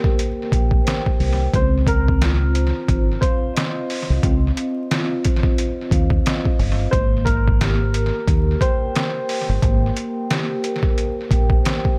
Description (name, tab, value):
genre	hip hop, boom-bap hip-hop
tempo	89 BPM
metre	4/4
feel	swing 60% on 16ths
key	Ab major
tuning	A4 = 439 Hz
part	vibraphone with soft mallets	accompaniment	0.0-12.0 s	Bb3 to G5	-27 LUFS	equal	cassette tape, high-pass filter, low-pass filter, tape echo
part	trip hop sampler-style drum kit	drums	0.0-12.0 s	hi-hat, kick drum, snare drum	-22 LUFS	equal	overdrive, tape echo
part	deep dub fingered electric bass	bass	0.5-11.6 s	G1 to Eb2	-22 LUFS	equal	none
part	warm upright piano	melody	1.6-9.6 s	Bb4 to C5	-29 LUFS	equal	high-pass filter, low-pass filter, tape echo
room	small room ambience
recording	echo-heavy mix, vinyl crackle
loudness	-19 LUFS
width	mono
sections	0.0-12.0 A section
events	none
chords	0.0 Abmaj9 (rootless); 1.5 Dbmaj9; 6.9 Abmaj9